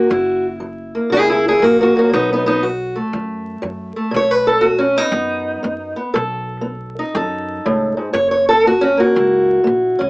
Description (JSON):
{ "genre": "acoustic country blues, solo or duo", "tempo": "120 BPM", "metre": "4/4", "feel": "swing 65% on 8ths", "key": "unclear", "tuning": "A4 = 440 Hz", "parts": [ { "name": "fingerpicked steel-string acoustic guitar", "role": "melody", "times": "0.0-10.1 s", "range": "F#2 to C#5", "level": "-14 LUFS", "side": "equal", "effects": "none" }, { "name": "upright bass", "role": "bass", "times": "0.1-10.1 s", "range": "F#1 to F#2", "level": "-28 LUFS", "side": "equal", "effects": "none" } ], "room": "wet booth ambience, RT60 0.2 s", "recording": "vinyl crackle, small speaker sound", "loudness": "-14 LUFS", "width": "side -26 dB against mid", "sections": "0.0-10.1 A section", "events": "steel-string acoustic guitar solo 0.0-10.1", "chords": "0.0 F#7; 2.1 B7; 8.1 F#7" }